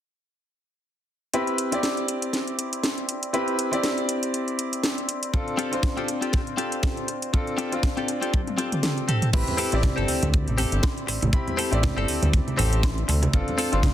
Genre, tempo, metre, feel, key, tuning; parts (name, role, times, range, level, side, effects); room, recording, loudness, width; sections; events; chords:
nu-disco, nu disco; 120 BPM; 4/4; swing 56% on 16ths; C major; A4 = 440 Hz
clear grand piano; accompaniment; 1.3-13.9 s; C4 to B5; -27 LUFS; left 1 dB; sidechain pumping, dub echo
house drum kit; drums; 1.3-13.9 s; crash cymbal, hi-hat, snare drum, toms, woodblock; -28 LUFS; right 1 dB; overdrive
kick drum; drums; 5.3-13.9 s; -24 LUFS; equal; soft clipping on snare
direct-recorded clean electric guitar; riff; 5.6-13.8 s; C4 to A4; -30 LUFS; left 2 dB; wide subtle chorus, dub echo
fat analog bass; bass; 9.3-13.9 s; G1 to D2; -24 LUFS; equal
congas; percussion; 9.5-13.9 s; -30 LUFS; right 3 dB
light reverb, small room ambience; dense, heavily limited modern master; -22 LUFS; side -11 dB against mid
1.3-9.3 A section; 9.3-13.9 B section
drum fill 8.3-9.3; kick drops out 8.8-9.3
1.3 Cmaj9; 5.3 G9sus4; 9.1 Am7; 13.3 G9sus4